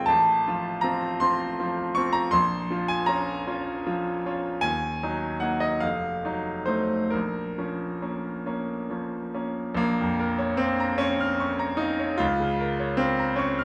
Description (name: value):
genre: classical, romantic nocturne for solo piano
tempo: 43-54 BPM (dotted quarters)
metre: 12/8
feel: rubato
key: Bb minor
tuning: A4 = 441 Hz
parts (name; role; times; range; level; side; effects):
- bright grand piano; solo; 0.0-13.6 s; F1 to F6; -26 LUFS; equal; none
room: moderate scoring stage reverb, RT60 2.0 s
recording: small room ambience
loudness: -26 LUFS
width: mono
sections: 0.0-9.8 A section; 9.8-13.6 B section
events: none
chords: 0.1 F/A; 2.3 Bbm; 4.6 Ebm; 5.8 F7b9; 7.1 Bbm; 12.2 Bbm/Db